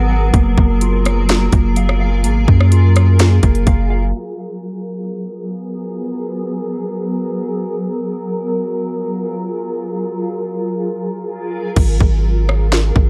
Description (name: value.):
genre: hip hop, atmospheric cloud-rap.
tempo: 126 BPM.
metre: 4/4.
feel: half-time.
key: G# dorian.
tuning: A4 = 440 Hz.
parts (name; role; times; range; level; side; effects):
granular cloud pad; sustained chords; 0.0-13.1 s; F#3 to A#4; -24 LUFS; equal; built-in reverb, sidechain pumping.
mellow electric guitar; arpeggios; 0.0-4.1 s; A#3 to F#5; -24 LUFS; equal; digital delay.
long sustained 808-style bass; bass; 0.0-4.1, 11.8-13.1 s; F#1 to F#2; -16 LUFS; equal; none.
trap drum kit; drums; 0.3-3.8, 11.8-13.1 s; crash cymbal, hi-hat, kick drum, rim click, snare drum; -17 LUFS; equal; overdrive.
room: little or no reverb.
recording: dark, warm production, low-pass filter.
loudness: -16 LUFS.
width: mono.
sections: 0.0-4.1 A section; 4.1-11.8 B section; 11.8-13.1 C section.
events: filter sweep 4.1-11.8; hi-hats muted 11.8-13.1.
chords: 0.3 F#maj9; 4.1 G#m9; 8.0 F#maj9; 11.8 G#m9.